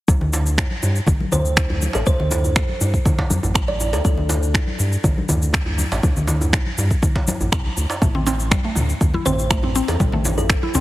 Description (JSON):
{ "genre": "afro house", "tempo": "121 BPM", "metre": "4/4", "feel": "straight", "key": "unclear", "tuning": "A4 = 441 Hz", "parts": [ { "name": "round analog bass", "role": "bass", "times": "0.1-10.8 s", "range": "A1 to G2", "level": "-22 LUFS", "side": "equal", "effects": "sidechain pumping" }, { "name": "deep house drum kit", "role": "drums", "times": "0.1-10.8 s", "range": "cabasa, finger snaps, toms", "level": "-24 LUFS", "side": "equal", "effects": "none" }, { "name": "electronic kick drum", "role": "drums", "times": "0.1-10.6 s", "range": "none", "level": "-19 LUFS", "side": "equal", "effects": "none" }, { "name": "congas", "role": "percussion", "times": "0.1-10.7 s", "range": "none", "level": "-26 LUFS", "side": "left 1 dB", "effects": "none" }, { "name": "djembe", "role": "percussion", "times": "0.1-10.8 s", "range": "none", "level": "-28 LUFS", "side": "right 2 dB", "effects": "none" }, { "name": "kalimba", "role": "melody", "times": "1.3-4.1, 9.3-10.5 s", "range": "A4 to D5", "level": "-26 LUFS", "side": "equal", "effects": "digital delay" }, { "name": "mallet-like synth pluck", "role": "arpeggios", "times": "8.0-10.8 s", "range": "G3 to E4", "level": "-24 LUFS", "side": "equal", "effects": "chorus, sidechain pumping, digital delay" } ], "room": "light reverb, small room ambience", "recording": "heavily compressed radio sound, multiband compression", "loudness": "-17 LUFS", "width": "side -16 dB against mid", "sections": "0.1-10.8 A section", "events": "none", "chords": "0.1 D5; 8.0 Am", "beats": "| 0.09 0.58 1.08 1.57 | 2.07 2.56 3.06 3.56 | 4.05 4.55 5.04 5.54 | 6.04 6.53 7.03 7.52 | 8.02 8.52 9.01 9.51 | 10.00 10.50" }